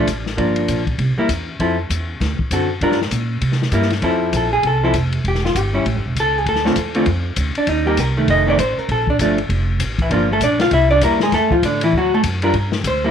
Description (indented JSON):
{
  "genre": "jazz, small-group swing and bop",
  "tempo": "197 BPM",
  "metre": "4/4",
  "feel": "swing 61% on 8ths",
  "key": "F major",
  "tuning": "A4 = 438 Hz",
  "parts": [
    { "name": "vintage hollow-body jazz guitar", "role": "accompaniment", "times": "0.0-13.1 s", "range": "D3 to F5", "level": "-17 LUFS", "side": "equal", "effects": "none" },
    { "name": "upright bass", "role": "bass", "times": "0.0-13.1 s", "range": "E1 to C3", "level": "-21 LUFS", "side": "right 1 dB", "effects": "none" },
    { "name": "open jazz drum kit", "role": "drums", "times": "0.1-12.9 s", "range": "hi-hat, kick drum, ride cymbal, snare drum", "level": "-24 LUFS", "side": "left 3 dB", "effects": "none" }
  ],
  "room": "light reverb, studio ambience",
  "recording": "1960s-style stereo",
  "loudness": "-15 LUFS",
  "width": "side -8 dB against mid",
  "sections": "0.0-4.0 A section; 4.0-13.1 B section",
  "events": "none",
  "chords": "0.4 Gm7; 1.0 C7; 1.6 Fmaj7; 2.2 D7; 2.8 Gm7; 3.4 C7; 4.0 Fmaj7; 5.2 Em; 5.8 A7; 6.5 Dm7; 7.7 Cm7; 8.3 F7; 8.9 Bbmaj7; 10.1 Gm7; 10.7 C7; 11.3 Fmaj7; 11.9 D; 12.5 G5"
}